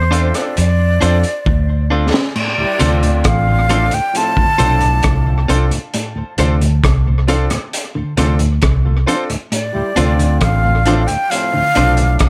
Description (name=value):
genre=roots reggae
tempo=67 BPM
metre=4/4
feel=straight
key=D minor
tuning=A4 = 442 Hz
part: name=breathy jazz flute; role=melody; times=0.0-12.3 s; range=C5 to A5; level=-21 LUFS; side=equal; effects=dub echo
part: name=vintage muted fingered electric bass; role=bass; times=0.0-12.3 s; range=A1 to F2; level=-17 LUFS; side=equal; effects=none
part: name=clean electric guitar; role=accompaniment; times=0.1-12.0 s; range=D4 to C5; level=-25 LUFS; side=equal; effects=dub echo
part: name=bright grand piano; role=stabs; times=0.1-12.0 s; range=C4 to A4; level=-25 LUFS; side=equal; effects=none
part: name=crunchy breakbeat drum kit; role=drums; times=0.1-12.3 s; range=crash cymbal, hi-hat, kick drum, rim click, snare drum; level=-22 LUFS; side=equal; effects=tape echo
part: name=clean electric guitar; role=arpeggios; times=2.4-11.9 s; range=A2 to D3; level=-25 LUFS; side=equal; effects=none
part: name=clear trombone section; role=second line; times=2.6-12.3 s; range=A2 to G4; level=-26 LUFS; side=equal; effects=dub echo
part: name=mellow tonewheel organ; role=accompaniment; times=2.6-12.1 s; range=D2 to D4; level=-25 LUFS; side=equal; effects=overdrive, chorus vibrato, slow rotary speaker
room=light reverb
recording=none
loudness=-15 LUFS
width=mono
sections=0.0-2.4 A section; 2.4-12.3 B section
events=drum fill 1.5-2.4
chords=0.0 Dm7